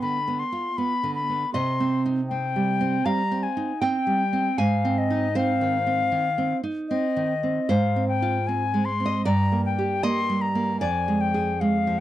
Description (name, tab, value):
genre	romantic duo for flute and classical guitar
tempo	78 BPM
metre	4/4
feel	rubato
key	C minor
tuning	A4 = 440 Hz
part	concert flute	melody	0.0-12.0 s	Eb5 to C6	-26 LUFS	left 5 dB	slapback echo
part	nylon-string guitar	accompaniment	0.0-12.0 s	F2 to Ab5	-24 LUFS	right 2 dB	none
room	light reverb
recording	dry, close 1970s-style studio recording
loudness	-22 LUFS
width	side -13 dB against mid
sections	0.0-12.0 A section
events	none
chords	0.0 G7; 1.5 Cm; 4.6 Ab; 7.7 Fm/Ab; 9.3 Eb/G; 10.8 Ddim/F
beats	0.02 0.78 | 1.54 2.30 3.05 3.81 | 4.58 5.36 6.12 6.90 | 7.69 8.47 9.25 10.03 | 10.80 11.60